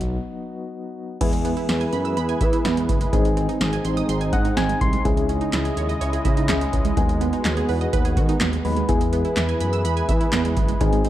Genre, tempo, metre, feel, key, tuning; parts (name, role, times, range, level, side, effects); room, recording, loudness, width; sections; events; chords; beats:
synth-pop; 125 BPM; 4/4; straight; E major; A4 = 440 Hz
soft electric-piano-like synth keys; accompaniment; 0.0-11.1 s; F#3 to B#5; -26 LUFS; left 4 dB; chorus, tremolo
smooth gliding synth bass; bass; 0.0-11.1 s; F#1 to E3; -25 LUFS; equal
electro analog drum machine; drums; 0.0-11.1 s; crash cymbal, handclaps, hi-hat, kick drum, snare drum; -23 LUFS; equal
sweeping resonant pad; sustained chords; 1.2-11.1 s; C#3 to D#5; -27 LUFS; right 2 dB; chorus
analog pluck; arpeggios; 1.2-11.1 s; D#3 to E6; -28 LUFS; right 11 dB; chorus, slapback echo
moderate recital hall reverb, RT60 1.8 s, digital ambience; dark, warm production; -19 LUFS; side -13 dB against mid
0.0-1.2 A section; 1.2-11.1 B section
break 0.2-1.2; synth keys fill 4.1-5.0
0.0 B; 1.2 E; 3.1 G#; 5.0 C#madd9; 7.0 G#m7/D#; 8.9 E
0.25 0.73 | 1.21 1.69 2.17 2.65 | 3.13 3.61 4.09 4.57 | 5.05 5.53 6.01 6.49 | 6.97 7.45 7.93 8.41 | 8.89 9.37 9.85 10.33 | 10.81